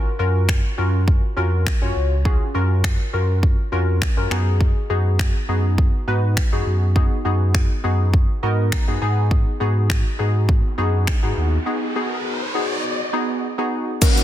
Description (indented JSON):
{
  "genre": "dance-pop",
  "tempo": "102 BPM",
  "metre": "4/4",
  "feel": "straight",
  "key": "unclear",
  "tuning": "A4 = 440 Hz",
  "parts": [
    { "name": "glassy digital keys", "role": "accompaniment", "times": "0.0-14.2 s", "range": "Bb3 to Bb5", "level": "-24 LUFS", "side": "left 1 dB", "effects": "chorus, sidechain pumping" },
    { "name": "sub bass with octave", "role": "bass", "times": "0.0-11.6 s", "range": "Db2 to G#2", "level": "-20 LUFS", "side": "equal", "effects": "sidechain pumping" },
    { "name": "pop drum kit", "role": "drums", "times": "0.5-14.2 s", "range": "crash cymbal, finger snaps, hi-hat, kick drum, shaker", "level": "-19 LUFS", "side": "equal", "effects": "soft clipping on snare" },
    { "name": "riser and downlifter", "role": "sound effects", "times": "10.7-14.2 s", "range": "none", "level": "-28 LUFS", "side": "equal", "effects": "none" },
    { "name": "supersaw pad", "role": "sustained chords", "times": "14.0-14.2 s", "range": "Eb3 to Gb4", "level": "-26 LUFS", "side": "right 4 dB", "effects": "sidechain pumping" }
  ],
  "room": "little or no reverb",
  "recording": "dense, heavily limited modern master",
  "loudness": "-17 LUFS",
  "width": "side -12 dB against mid",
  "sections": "0.0-14.0 A section",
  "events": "synth keys fill 8.1-9.3; riser 10.7-14.0; break 11.7-14.0",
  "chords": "0.0 Gbmaj7; 4.3 B6/F#; 9.0 Abm7"
}